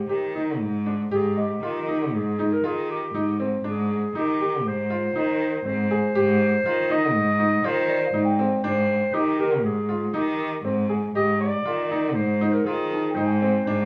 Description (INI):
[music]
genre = contemporary instrumental, chamber music in an uneven meter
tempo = 119 BPM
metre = 5/4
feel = straight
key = Ab lydian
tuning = A4 = 443 Hz
[part]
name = mellow clarinet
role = melody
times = 0.0-13.9 s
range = G4 to Eb5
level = -28 LUFS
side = equal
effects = none
[part]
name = bright baby grand piano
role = arpeggios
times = 0.0-13.9 s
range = C4 to Ab4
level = -29 LUFS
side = equal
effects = none
[part]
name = rich cello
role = bass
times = 0.0-13.9 s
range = Ab2 to Eb3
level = -28 LUFS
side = equal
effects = none
[part]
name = celesta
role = texture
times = 1.4-2.7, 7.9-13.9 s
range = Eb4 to Ab5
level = -34 LUFS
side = equal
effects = none
[sound]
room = light reverb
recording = small room ambience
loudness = -23 LUFS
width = mono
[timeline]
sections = 0.0-1.1 A section; 1.1-13.9 B section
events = none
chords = 0.0 Abmaj7